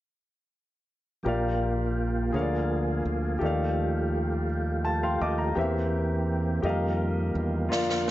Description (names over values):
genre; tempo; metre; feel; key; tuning
slow gospel; 56 BPM (dotted quarters); 6/8; straight; Bb major; A4 = 439 Hz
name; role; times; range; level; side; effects
warm baby grand piano; accompaniment; 1.2-8.1 s; Bb2 to D6; -29 LUFS; left 2 dB; none
tonewheel organ; sustained chords; 1.2-8.1 s; F2 to Ab4; -30 LUFS; right 1 dB; slow rotary speaker, chorus vibrato
modern bright fingered electric bass; bass; 1.3-7.7 s; Bb1 to F2; -29 LUFS; equal; none
snare drum; drums; 7.7-8.1 s; none; -29 LUFS; right 1 dB; none
room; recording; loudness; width
moderate large studio reverb, RT60 1.2 s, small room ambience; nothing above 7.7 kHz; -25 LUFS; side -15 dB against mid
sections
1.3-8.1 A section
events
grand piano fill 4.5-5.6; drum fill 7.7-8.1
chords
1.3 Bb6; 2.3 Bb7/D; 3.4 Ebmaj9#11; 5.6 C7/E; 6.6 F9sus4